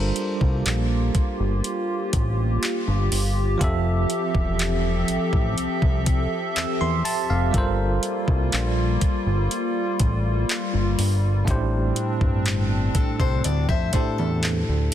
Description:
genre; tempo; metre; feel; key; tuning
contemporary R&B; 61 BPM; 4/4; straight; G dorian; A4 = 440 Hz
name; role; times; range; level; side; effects
bell-like tine electric piano; accompaniment; 0.0-14.9 s; A2 to E6; -28 LUFS; right 3 dB; medium stereo tremolo
hollow soft pad; sustained chords; 0.1-14.9 s; F3 to E5; -27 LUFS; left 1 dB; chorus
fat analog bass; bass; 0.0-14.9 s; E1 to F2; -23 LUFS; equal; none
smooth R&B drum kit; drums; 0.2-14.9 s; handclaps, hi-hat, kick drum; -25 LUFS; equal; none
picked steel-string acoustic guitar; arpeggios; 13.0-14.9 s; A4 to E5; -29 LUFS; left 9 dB; ping-pong delay
room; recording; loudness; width
little or no reverb; dense, heavily limited modern master; -20 LUFS; side -11 dB against mid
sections
0.0-14.9 A section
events
none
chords
0.0 Gm11; 3.6 Fmaj9; 7.5 Gm11; 11.5 D9sus4

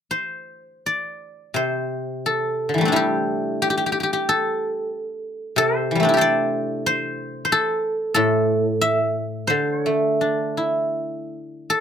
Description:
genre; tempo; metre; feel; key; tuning
chinese traditional, Chinese solo plucked strings; 77-94 BPM; 4/4; rubato; D shang mode; A4 = 440 Hz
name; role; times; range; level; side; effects
guzheng; solo; 0.0-11.8 s; A2 to E5; -20 LUFS; equal; none
room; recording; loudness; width
little or no reverb; close, detailed microphones; -19 LUFS; side -8 dB against mid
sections
0.8-11.7 A section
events
none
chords
none

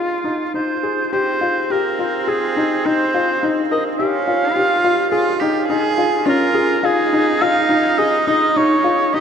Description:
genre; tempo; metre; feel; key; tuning
contemporary instrumental, chamber music in an uneven meter; 105 BPM; 5/4; straight; F minor; A4 = 441 Hz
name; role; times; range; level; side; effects
clear oboe; melody; 0.0-9.2 s; F4 to F5; -19 LUFS; right 1 dB; none
felt-muted upright piano; arpeggios; 0.0-9.2 s; Db4 to Bb4; -19 LUFS; left 2 dB; none
rich cello; second line; 1.1-9.2 s; C4 to Ab4; -21 LUFS; right 4 dB; none
room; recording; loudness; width
wet huge ambient reverb, RT60 8.6 s; in a vast, echoing space; -15 LUFS; side -7 dB against mid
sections
0.0-1.1 A section; 1.1-9.2 B section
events
none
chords
0.0 Fm7; 1.1 Fm9; 4.0 Db; 6.8 Eb7sus4

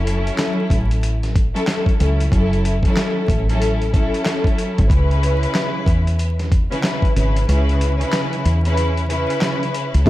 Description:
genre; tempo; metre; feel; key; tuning
hip hop, boom-bap hip-hop; 93 BPM; 4/4; swing 62% on 16ths; unclear; A4 = 440 Hz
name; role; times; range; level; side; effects
warm studio string section; accompaniment; 0.0-10.1 s; C#3 to B4; -21 LUFS; left 1 dB; high-pass filter, low-pass filter
deep dub fingered electric bass; bass; 0.0-10.1 s; F#1 to E2; -18 LUFS; equal; none
dusty soul sampler-style drum kit; drums; 0.1-10.1 s; handclaps, hi-hat, kick drum, snare drum; -20 LUFS; equal; overdrive
dark upright piano; melody; 10.1 s; none; barely audible; none; none
tonewheel organ; sustained chords; 10.1 s; C#3 to E4; -10 LUFS; equal; stopped rotary speaker, high-pass filter, low-pass filter
room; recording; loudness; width
little or no reverb; dark, warm production, vinyl crackle; -16 LUFS; side -16 dB against mid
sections
0.0-10.1 A section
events
kick muted 7.5-10.1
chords
0.0 F#m7; 4.9 C#m7

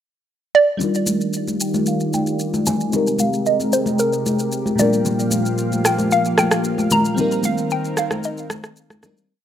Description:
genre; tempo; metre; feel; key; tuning
amapiano; 113 BPM; 4/4; straight; Eb major; A4 = 439 Hz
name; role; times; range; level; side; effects
hollow square pluck; melody; 0.5-9.0 s; Bb4 to Bb5; -20 LUFS; right 2 dB; chorus, low-pass filter, digital delay
crystalline FM electric piano; accompaniment; 0.8-9.3 s; Bb2 to Bb4; -24 LUFS; left 1 dB; chorus, low-pass filter
lush unison pad; sustained chords; 0.8-9.3 s; Bb2 to F5; -23 LUFS; equal; chorus, low-pass filter
electronic shaker and rim click; drums; 0.8-9.3 s; none; -24 LUFS; equal; none
congas; percussion; 0.8-9.2 s; none; -23 LUFS; left 1 dB; none
room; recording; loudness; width
light reverb, digital ambience; rough home demo mix; -17 LUFS; side -10 dB against mid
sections
0.0-0.8 pickup bar; 0.8-9.3 breakdown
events
filter sweep 0.8-9.3; fade-out 7.2-9.3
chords
0.0 N.C.; 0.8 Ebmaj9; 2.9 Abmaj9; 4.8 Gm7/Bb; 7.2 Cm9

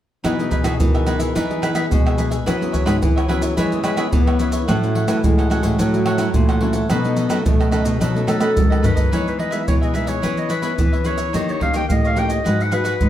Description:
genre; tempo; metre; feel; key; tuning
samba and choro; 108 BPM; 4/4; straight; E major; A4 = 438 Hz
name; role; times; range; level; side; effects
warm trombone; second line; 0.2-9.1 s; B2 to B3; -24 LUFS; left 2 dB; none
cavaquinho; accompaniment; 0.2-13.0 s; D#4 to F#5; -27 LUFS; right 2 dB; none
nylon-string guitar; accompaniment; 0.2-13.1 s; A2 to B4; -25 LUFS; left 1 dB; none
nylon-string guitar; bass; 0.2-13.1 s; G#2 to A3; -23 LUFS; equal; none
maracas, surdo, pandeiro and tamborim; percussion; 0.2-13.1 s; none; -20 LUFS; right 1 dB; none
warm clarinet; melody; 8.3-13.1 s; A4 to G5; -24 LUFS; left 2 dB; none
room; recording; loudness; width
wet studio reverb, RT60 0.7 s; heard from further back in the room; -16 LUFS; side -12 dB against mid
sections
0.2-9.1 A section; 9.1-13.1 B section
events
drum fill 8.7-9.1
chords
0.2 Emaj7; 2.5 C#m7; 4.7 A6; 6.9 B9; 9.1 Emaj7; 10.2 C#m7/E; 11.3 D#7; 12.5 G#m7

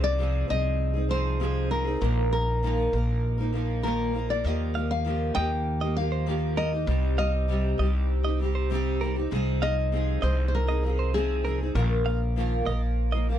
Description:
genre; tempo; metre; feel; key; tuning
acoustic pop; 99 BPM; 4/4; straight; unclear; A4 = 440 Hz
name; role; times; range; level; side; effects
nylon-string guitar; melody; 0.0-13.4 s; Ab4 to G5; -31 LUFS; left 2 dB; slapback echo
fingerpicked steel-string acoustic guitar; accompaniment; 0.0-13.4 s; Bb2 to Bb4; -30 LUFS; equal; double-tracked left and right
upright bass; bass; 0.0-13.4 s; Bb1 to Eb2; -26 LUFS; equal; none
direct-recorded clean electric guitar; arpeggios; 4.8-13.3 s; Bb4 to F5; -33 LUFS; right 7 dB; none
room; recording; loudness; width
light reverb; dry, close 1970s-style studio recording; -24 LUFS; side -10 dB against mid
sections
0.0-13.4 A section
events
none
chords
0.0 Ab6/C; 2.0 Bbsus4; 4.4 Ebadd9; 6.9 Cm; 9.3 Ab6/C; 11.8 Bbsus4

